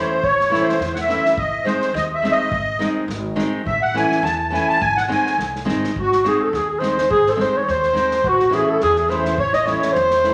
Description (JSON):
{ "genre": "balkan folk, Balkan wedding band", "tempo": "105 BPM", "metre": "2/4", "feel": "swing 53% on 16ths", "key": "G# phrygian dominant", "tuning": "A4 = 442 Hz", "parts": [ { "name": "musette accordion", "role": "second line", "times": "0.0-10.3 s", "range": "F#4 to A5", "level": "-22 LUFS", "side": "equal", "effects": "none" }, { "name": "nylon-string guitar", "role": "accompaniment", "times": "0.0-10.3 s", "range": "D#3 to E4", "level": "-26 LUFS", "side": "equal", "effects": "none" }, { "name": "upright bass", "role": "bass", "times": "0.2-10.3 s", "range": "G#1 to E2", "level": "-33 LUFS", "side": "equal", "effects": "none" }, { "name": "unplugged drum kit", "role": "percussion", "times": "0.2-10.3 s", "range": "kick drum, snare drum", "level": "-34 LUFS", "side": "equal", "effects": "none" }, { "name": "mellow clarinet", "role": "melody", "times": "6.0-10.3 s", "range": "F#4 to D#5", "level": "-19 LUFS", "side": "equal", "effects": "none" } ], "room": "wet large studio reverb, RT60 1.2 s", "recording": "none", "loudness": "-19 LUFS", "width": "mono", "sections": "0.0-6.0 A section; 6.0-10.3 B section", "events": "accordion solo 0.0-6.0", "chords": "0.0 A; 1.4 G#; 3.7 A; 4.8 G#; 8.2 A" }